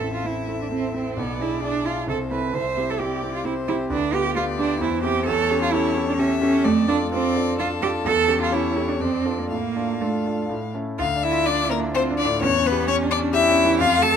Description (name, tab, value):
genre	quick classical-period movement for piano trio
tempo	130 BPM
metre	3/4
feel	rubato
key	A minor, D minor from 5.3 s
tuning	A4 = 440 Hz
part	rich violin	melody	0.0-14.2 s	A4 to A5	-26 LUFS	left 8 dB	none
part	rich cello	second line	0.0-14.2 s	A3 to C5	-23 LUFS	right 5 dB	none
part	clear concert grand piano	accompaniment	0.0-14.2 s	A1 to A4	-24 LUFS	left 1 dB	none
room	light reverb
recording	close, detailed microphones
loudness	-20 LUFS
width	side -8 dB against mid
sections	0.0-11.0 A section; 11.0-14.2 B section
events	none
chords	0.0 Am; 1.2 E7/B; 2.1 Am/C; 2.5 C; 3.9 G7/D; 4.8 C/E; 5.3 A7/E; 6.7 Dm/F; 8.1 A7/E; 9.0 Dm/F; 9.5 Dm/A; 10.5 A; 11.0 Dm; 12.4 C#dim/E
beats	0.25 0.71 | 1.18 1.63 2.09 | 2.55 3.00 3.46 | 3.91 4.36 4.81 | 5.27 5.73 6.19 | 6.65 7.12 7.59 | 8.06 8.53 9.01 | 9.51 10.01 10.50 | 11.00 11.48 11.96 | 12.43 12.89 13.35 | 13.81